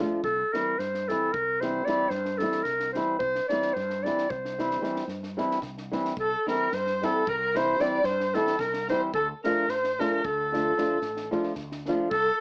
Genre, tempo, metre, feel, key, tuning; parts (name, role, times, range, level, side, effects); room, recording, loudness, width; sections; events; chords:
balkan folk, Balkan wedding band; 222 BPM (eighths); 11/8; straight; C mixolydian; A4 = 436 Hz
flamenco guitar; accompaniment; 0.0-12.1 s; E3 to F4; -31 LUFS; equal
mellow fretless electric bass; bass; 0.0-12.3 s; A1 to G2; -41 LUFS; equal
warm clarinet; melody; 0.2-12.4 s; A4 to D5; -29 LUFS; equal
compact cocktail drum kit; percussion; 0.2-12.2 s; kick drum, snare drum; -44 LUFS; equal
warm violin; second line; 6.2-12.4 s; A4 to D5; -34 LUFS; equal; slapback echo
moderate studio reverb, RT60 0.6 s; worn, warbling old tape, cassette tape, warbly pitch drift, small speaker sound; -27 LUFS; mono
0.0-6.2 A section; 6.2-12.4 A section
0.2 C; 9.1 Dm